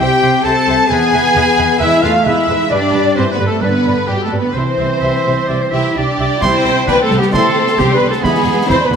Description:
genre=cinematic, heroic adventure film score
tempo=132 BPM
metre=4/4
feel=straight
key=C major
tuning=A4 = 439 Hz
part: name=warm studio violin section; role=melody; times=0.0-9.0 s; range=B3 to A5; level=-20 LUFS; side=left 3 dB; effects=none
part: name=bright oboe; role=second line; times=0.0-9.0 s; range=G4 to E5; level=-26 LUFS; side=right 2 dB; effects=none
part: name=mellow clarinet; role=second line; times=0.0-5.9 s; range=G4 to A5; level=-21 LUFS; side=equal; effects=none
part: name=mellow silver concert flute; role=second line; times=0.0-9.0 s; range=D5 to C6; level=-24 LUFS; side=left 3 dB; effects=none
part: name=warm symphonic violin section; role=second line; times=0.0-9.0 s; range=G4 to A5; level=-23 LUFS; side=equal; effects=none
part: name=warm symphonic viola section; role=accompaniment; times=0.0-9.0 s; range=G4 to E5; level=-20 LUFS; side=right 1 dB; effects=none
part: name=warm French horn section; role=sustained chords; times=0.0-8.4 s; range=B2 to E4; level=-21 LUFS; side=left 4 dB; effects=none
part: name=clear trumpet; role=stabs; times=0.0-8.4 s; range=G4 to C6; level=-20 LUFS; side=right 2 dB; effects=none
part: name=dark symphonic cello section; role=bass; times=0.0-9.0 s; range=G3 to A4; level=-19 LUFS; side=right 1 dB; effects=none
part: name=warm symphonic double bass section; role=bass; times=0.0-9.0 s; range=C2 to G2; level=-20 LUFS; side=right 3 dB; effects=none
part: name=clash cymbals, concert bass drum and concert snare drum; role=drums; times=6.4-9.0 s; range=none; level=-22 LUFS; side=equal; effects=none
room=wet scoring stage reverb, RT60 1.8 s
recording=none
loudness=-11 LUFS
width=side -7 dB against mid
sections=0.0-6.4 A section; 6.4-9.0 B section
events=none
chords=0.0 C5; 0.9 E; 2.7 G; 4.6 C; 8.2 E

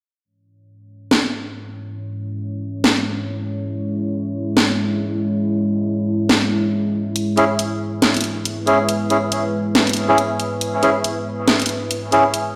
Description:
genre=deep dubstep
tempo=139 BPM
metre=4/4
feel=swing 56% on 16ths, half-time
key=C# minor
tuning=A4 = 440 Hz
part: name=deep dark ambient pad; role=sustained chords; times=1.4-12.6 s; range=G#3 to C#5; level=-24 LUFS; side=equal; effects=chorus, built-in reverb
part: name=garage drum kit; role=drums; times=1.1-12.4 s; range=hi-hat, snare drum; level=-21 LUFS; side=equal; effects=none
part: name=melodica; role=stabs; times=7.4-12.2 s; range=C#4 to G#4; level=-21 LUFS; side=equal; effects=dub echo
room=wet echo chamber reverb, RT60 1.8 s, digital ambience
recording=played on a big sound system in a bare room, stone room reverb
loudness=-19 LUFS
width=mono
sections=0.3-12.6 A section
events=none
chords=0.3 C#m

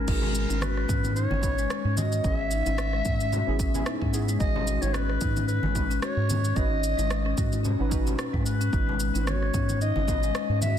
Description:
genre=organic downtempo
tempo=111 BPM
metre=4/4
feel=swing 56% on 16ths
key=unclear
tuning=A4 = 440 Hz
part: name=growling clarinet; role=melody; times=0.0-10.8 s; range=A#4 to E5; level=-31 LUFS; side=left 2 dB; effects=digital delay
part: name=deep mellow chord stab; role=accompaniment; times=0.0-10.2 s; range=B3 to B4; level=-37 LUFS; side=right 4 dB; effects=chorus, cassette tape, sidechain pumping, digital delay
part: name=marimba with soft mallets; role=arpeggios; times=0.0-10.8 s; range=G#3 to F#4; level=-32 LUFS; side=left 8 dB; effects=digital delay
part: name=round analog bass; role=bass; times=0.0-10.8 s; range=G#1 to G#2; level=-27 LUFS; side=right 1 dB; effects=sidechain pumping
part: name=electronic kick drum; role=drums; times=0.1-10.2 s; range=none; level=-29 LUFS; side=right 1 dB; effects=none
part: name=organic electronic drum kit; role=drums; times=0.1-10.7 s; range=crash cymbal, rim click, shaker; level=-35 LUFS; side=right 1 dB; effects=low-pass filter on cymbals, low-pass filter on perc, soft clipping on snare, low-pass filter on snare, low-pass filter on room
part: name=congas and bongos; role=percussion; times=0.2-10.7 s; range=none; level=-36 LUFS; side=right 2 dB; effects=none
room=light reverb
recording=dense, heavily limited modern master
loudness=-24 LUFS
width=side -10 dB against mid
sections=0.1-10.8 A section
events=none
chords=0.0 B69/G#; 2.2 F#7sus4/G# (rootless); 4.4 B69/G#

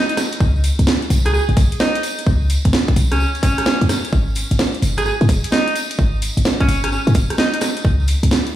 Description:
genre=UK garage, two-step garage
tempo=129 BPM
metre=4/4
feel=swing 66% on 16ths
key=unclear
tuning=A4 = 439 Hz
part: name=edgy alto saxophone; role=melody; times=0.0-7.6 s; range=C#4 to G#4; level=-23 LUFS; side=right 1 dB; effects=analog delay
part: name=house drum kit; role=drums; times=0.1-8.5 s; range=hi-hat, rim click, snare drum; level=-21 LUFS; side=right 1 dB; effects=none
part: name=tambourine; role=percussion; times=0.1-8.5 s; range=none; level=-30 LUFS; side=right 2 dB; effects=none
part: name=short 808-style bass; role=bass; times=0.4-8.3 s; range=F#1 to G#2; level=-16 LUFS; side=equal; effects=none
part: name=electronic kick drum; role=drums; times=0.4-8.0 s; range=none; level=-17 LUFS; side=equal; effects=none
room=moderate lush hall reverb, RT60 1.6 s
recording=dreamy mix soaked in reverb, studio reverb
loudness=-15 LUFS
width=side -13 dB against mid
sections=0.0-8.6 A section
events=none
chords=0.4 C#7(no3); 4.1 F#sus2; 7.8 C#5

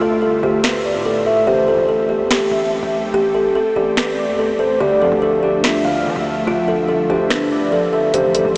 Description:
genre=hip hop, trap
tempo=144 BPM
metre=4/4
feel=half-time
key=unclear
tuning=A4 = 440 Hz
part: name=kalimba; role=melody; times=0.0-8.6 s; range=F4 to B4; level=-17 LUFS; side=equal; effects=diffuse ambient delay
part: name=ethereal airy pad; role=sustained chords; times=0.0-8.6 s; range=D3 to E5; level=-24 LUFS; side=equal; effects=ensemble chorus, built-in reverb, phaser
part: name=hard-hitting 808-style bass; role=bass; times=0.0-8.6 s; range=A1 to F3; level=-29 LUFS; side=equal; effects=none
part: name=warm velvety synth lead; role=second line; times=0.4-8.5 s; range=C5 to F5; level=-20 LUFS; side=equal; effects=chorus, diffuse ambient delay
part: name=trap drum kit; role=drums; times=0.6-8.4 s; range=finger snaps, hi-hat, snare drum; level=-24 LUFS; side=equal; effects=vintage 12-bit sampler grit
part: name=concert harp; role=accompaniment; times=4.8-8.6 s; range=A2 to E5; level=-22 LUFS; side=equal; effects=none
room=wet huge ambient reverb, RT60 6.5 s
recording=dreamy mix soaked in reverb, small speaker sound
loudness=-14 LUFS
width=side -26 dB against mid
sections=0.0-8.6 A section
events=break 0.0-3.1; hi-hats muted 1.5-8.1; kick muted 7.3-8.1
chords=0.0 Dmadd9; 1.5 Am7; 4.8 Dmadd9

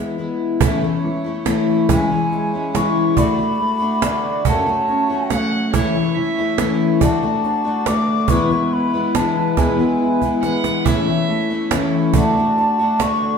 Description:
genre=acoustic folk duo or small band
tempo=47 BPM (dotted quarters)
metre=6/8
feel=straight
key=A major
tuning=A4 = 440 Hz
part: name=fingerpicked twelve-string acoustic guitar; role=accompaniment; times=0.0-13.4 s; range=E2 to F#4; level=-20 LUFS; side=left 4 dB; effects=none
part: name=hand-pumped harmonium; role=sustained chords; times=0.6-13.4 s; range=E3 to D5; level=-28 LUFS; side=right 3 dB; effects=none
part: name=clear upright piano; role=arpeggios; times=0.6-13.4 s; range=E3 to G#4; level=-24 LUFS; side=right 3 dB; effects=none
part: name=cajon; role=percussion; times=0.6-13.2 s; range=none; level=-22 LUFS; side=right 6 dB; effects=none
part: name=baroque flute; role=melody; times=1.9-13.4 s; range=G#5 to D6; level=-20 LUFS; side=left 2 dB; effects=none
part: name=warm fiddle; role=second line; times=5.3-11.9 s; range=C#5 to F#5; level=-26 LUFS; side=right 5 dB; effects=none
room=wet stone room reverb, RT60 1.3 s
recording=band playing live in one room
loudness=-16 LUFS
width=side -6 dB against mid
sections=0.6-13.4 A section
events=drum fill 10.2-10.9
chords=0.0 E; 0.6 A; 1.9 C#m; 3.2 D; 4.4 F#m; 5.7 A/E; 7.0 D; 8.3 E; 10.9 A; 12.1 D

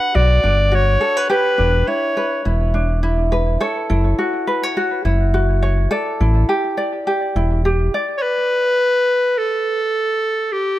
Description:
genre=folktronica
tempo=104 BPM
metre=4/4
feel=swing 56% on 16ths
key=unclear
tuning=A4 = 440 Hz
part: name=bright clarinet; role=melody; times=0.0-2.5, 8.2-10.8 s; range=G4-20c to F#5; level=-17 LUFS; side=equal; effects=tape echo
part: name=ukulele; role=arpeggios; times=0.0-8.8 s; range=D4 to D5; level=-20 LUFS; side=equal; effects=tape echo
part: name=round analog bass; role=bass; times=0.2-7.9 s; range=E1 to B1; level=-16 LUFS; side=equal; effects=tube saturation
room=light reverb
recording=none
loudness=-15 LUFS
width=side -14 dB against mid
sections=0.0-8.2 A section; 8.2-10.8 B section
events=none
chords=0.0 Gmaj7; 1.3 Em7; 3.6 F#m7; 5.9 A7sus4; 8.2 N.C.

